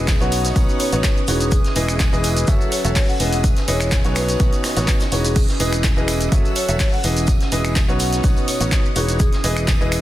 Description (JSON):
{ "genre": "piano house", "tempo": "125 BPM", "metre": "4/4", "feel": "straight", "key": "E major", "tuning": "A4 = 440 Hz", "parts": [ { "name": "string machine, violins", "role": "sustained chords", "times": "0.0-10.0 s", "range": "E4 to E6", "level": "-31 LUFS", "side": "left 1 dB", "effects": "ensemble chorus, sidechain pumping" }, { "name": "clear upright piano", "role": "riff", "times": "0.0-10.0 s", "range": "B2 to E5", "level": "-24 LUFS", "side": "left 1 dB", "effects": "sidechain pumping" }, { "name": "fingered electric bass", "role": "bass", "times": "0.0-10.0 s", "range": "E1 to B1", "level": "-22 LUFS", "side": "equal", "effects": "sidechain pumping" }, { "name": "warbly tape-like pad", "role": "texture", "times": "0.0-10.0 s", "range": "C#4 to D#6", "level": "-28 LUFS", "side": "right 4 dB", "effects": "chorus, built-in reverb, sidechain pumping" }, { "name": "electronic kick drum", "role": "drums", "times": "0.1-9.8 s", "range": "none", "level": "-18 LUFS", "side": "equal", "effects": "none" }, { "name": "punchy analog drum machine", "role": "drums", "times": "0.1-10.0 s", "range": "crash cymbal, finger snaps, handclaps, hi-hat, shaker", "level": "-25 LUFS", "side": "right 1 dB", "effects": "none" }, { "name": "vintage drum kit", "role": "drums", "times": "0.1-10.0 s", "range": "hi-hat, shaker, snare drum", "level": "-33 LUFS", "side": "equal", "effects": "none" }, { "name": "tambourine", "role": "percussion", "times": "0.1-10.0 s", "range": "none", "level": "-35 LUFS", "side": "right 4 dB", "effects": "none" }, { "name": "vibraphone with soft mallets", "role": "melody", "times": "0.2-9.2 s", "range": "G#4 to F#5", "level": "-28 LUFS", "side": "left 2 dB", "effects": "tape echo" } ], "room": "studio ambience", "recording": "dense, heavily limited modern master", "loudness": "-16 LUFS", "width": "side -14 dB against mid", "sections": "0.0-10.0 A section", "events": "none", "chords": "0.3 Badd9; 1.5 Emaj7; 2.5 F#m7; 3.2 Emaj7; 4.2 Badd9; 5.4 Emaj7; 6.3 F#m7; 7.0 Emaj7; 8.0 Badd9; 9.2 Emaj7", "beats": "0.08 0.56 1.04 | 1.52 2.00 2.48 2.96 | 3.44 3.92 4.40 4.88 | 5.36 5.84 6.32 6.80 | 7.28 7.76 8.24 8.72 | 9.20 9.68" }